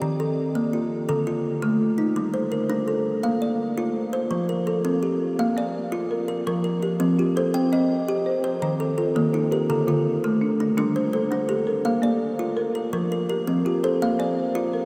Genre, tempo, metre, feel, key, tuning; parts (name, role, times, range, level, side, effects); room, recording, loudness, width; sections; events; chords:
southern african traditional, mbira-style interlocking cycle; 111 BPM (dotted quarters); 12/8; straight; Bb major; A4 = 440 Hz
kalimba; arpeggios; 0.0-14.9 s; D3 to G5; -24 LUFS; equal
folk marimba with soft mallets; arpeggios; 5.6-14.9 s; D3 to C5; -29 LUFS; equal
wet huge ambient reverb, RT60 7.6 s; dreamy mix soaked in reverb; -24 LUFS; mono
0.0-5.4 A section; 5.4-14.9 A section
0.0 Eb5; 1.1 Dm; 2.2 Gm; 3.2 Bb; 4.3 F; 5.4 Bb; 6.5 F; 7.5 Cm; 8.6 Eb; 9.7 Dm; 10.8 Gm; 11.9 Bb; 12.9 F; 14.0 Bb